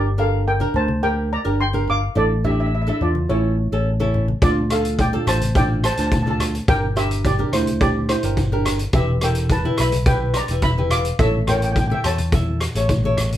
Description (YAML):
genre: calypso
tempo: 106 BPM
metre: 4/4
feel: straight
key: unclear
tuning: A4 = 440 Hz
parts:
  - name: steel pan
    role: melody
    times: 0.0-12.9 s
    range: E4 to D6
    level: -23 LUFS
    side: right 1 dB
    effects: none
  - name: flamenco guitar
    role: accompaniment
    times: 0.0-13.3 s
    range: C#4 to E5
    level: -25 LUFS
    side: equal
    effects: none
  - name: fingered electric bass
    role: bass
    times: 0.0-13.4 s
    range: E1 to E2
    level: -21 LUFS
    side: equal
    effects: none
  - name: congas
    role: percussion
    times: 0.6-13.4 s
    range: none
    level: -30 LUFS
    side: left 3 dB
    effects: none
  - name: street-band drum kit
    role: drums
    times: 4.4-13.4 s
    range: hi-hat, kick drum, rim click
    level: -21 LUFS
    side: equal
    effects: none
room: moderate studio reverb, RT60 0.5 s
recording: band playing live in one room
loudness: -17 LUFS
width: side -12 dB against mid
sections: 0.0-13.4 A section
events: none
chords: 0.0 Gmadd9; 2.2 Asus4; 3.3 A; 4.4 Dm; 6.7 Gm; 8.9 Em7; 11.2 A